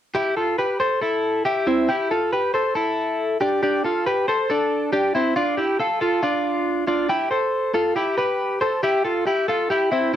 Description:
indie pop; 138 BPM; 4/4; straight; C major; A4 = 439 Hz
twelve-string electric guitar; arpeggios; 0.1-10.2 s; C4 to C5; -19 LUFS; equal; slapback echo
moderate studio reverb, RT60 0.5 s; -19 LUFS; side -10 dB against mid
0.1-7.1 A section; 7.1-10.2 B section
0.1 C; 3.4 G5; 5.4 Dm; 7.1 C
| 0.15 0.58 1.02 1.45 | 1.88 2.32 2.75 3.19 | 3.62 4.05 4.49 4.92 | 5.36 5.79 6.22 6.66 | 7.09 7.53 7.96 8.39 | 8.83 9.26 9.70 10.13

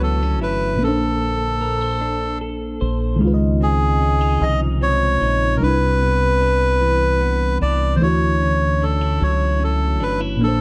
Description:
slow six-eight R&B; 50 BPM (dotted quarters); 6/8; straight; A4 = 441 Hz
melodica; melody; 0.0-10.6 s; G#4 to D#5; -23 LUFS; equal; slapback echo
clean electric guitar; second line; 0.0-10.6 s; C3 to C5; -28 LUFS; equal; vibrato effect, slapback echo
mellow FM electric piano; accompaniment; 0.0-10.6 s; Bb2 to D#5; -26 LUFS; equal; chorus, phaser
deep dub fingered electric bass; bass; 0.0-10.6 s; G1 to D2; -23 LUFS; equal
light reverb; dark, warm production; -19 LUFS; mono
0.0-10.6 A section
0.0 Dmaj9; 0.8 Bbmaj9; 3.2 C#maj9; 5.6 Cmaj9; 8.0 Dmaj9
| 0.81 2.01 | 3.21 4.41 | 5.61 6.81 | 8.01 9.21 | 10.41

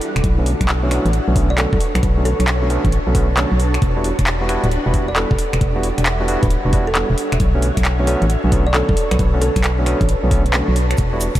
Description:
UK garage, two-step garage; 134 BPM; 4/4; swing 65% on 16ths; A4 = 440 Hz
soft string machine; sustained chords; 0.0-11.4 s; D4 to C#5; -27 LUFS; equal; phaser, ensemble chorus, sidechain pumping
garage drum kit; drums; 0.0-11.4 s; finger snaps, handclaps, hi-hat; -24 LUFS; equal
granular cloud pad; texture; 0.0-11.4 s; G3 to A5; -29 LUFS; right 1 dB; built-in reverb, ensemble chorus, sidechain pumping
organ-like FM bass; bass; 0.2-11.4 s; D1 to B1; -18 LUFS; equal
electronic kick drum; drums; 0.2-11.4 s; -19 LUFS; equal
barky tine electric piano; stabs; 0.4-11.2 s; D3 to F#4; -23 LUFS; equal; low-pass filter, analog delay
kalimba; melody; 1.5-10.1 s; A4 to D5; -27 LUFS; right 1 dB; analog delay
cabasa; percussion; 11.0-11.4 s; -29 LUFS; right 4 dB
light reverb, digital ambience; vinyl crackle; -14 LUFS; side -14 dB against mid
0.0-11.4 A section
filter sweep on tine electric piano 0.0-11.4
0.2 Bm9; 3.8 Em9; 7.4 Bm9
| 0.24 0.69 1.13 1.58 | 2.03 2.48 2.92 3.37 | 3.82 4.27 4.72 5.16 | 5.61 6.06 6.51 6.96 | 7.40 7.85 8.30 8.75 | 9.19 9.64 10.09 10.54 | 10.98

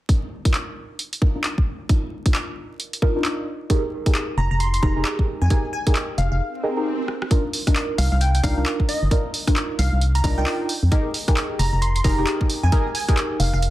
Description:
UK garage, two-step garage; 133 BPM; 4/4; swing 61% on 16ths; C minor; A4 = 439 Hz
deep mellow chord stab; stabs; 0.1-13.7 s; D4 to Bb4; -27 LUFS; equal; chorus, phaser, tape echo
electronic kick drum; drums; 0.1-13.2 s; -21 LUFS; equal
punchy analog drum machine; drums; 0.1-13.7 s; handclaps, hi-hat, rim click; -27 LUFS; equal
glassy wavetable pluck; melody; 4.4-13.6 s; Eb5 to C6; -28 LUFS; right 1 dB; chorus
organ-like FM bass; bass; 4.4-13.7 s; F1 to F2; -19 LUFS; equal
swell; sound effects; 6.5-7.3 s; -30 LUFS; right 2 dB
light reverb; dense, heavily limited modern master, vinyl crackle; -19 LUFS; side -15 dB against mid
0.1-7.3 A section; 7.3-13.7 B section
filter sweep on synth stab 0.1-7.3; break 6.4-7.3; swell 6.5-7.3; drum fill 7.1
0.1 Bbadd11/D; 3.5 Fm11; 7.3 Cm11; 10.7 Fm11
| 0.09 0.54 0.99 1.44 | 1.89 2.35 2.80 3.25 | 3.70 4.15 4.60 5.05 | 5.50 5.96 6.41 6.86 | 7.31 7.76 8.21 8.66 | 9.11 9.56 10.02 10.47 | 10.92 11.37 11.82 12.27 | 12.72 13.17 13.62

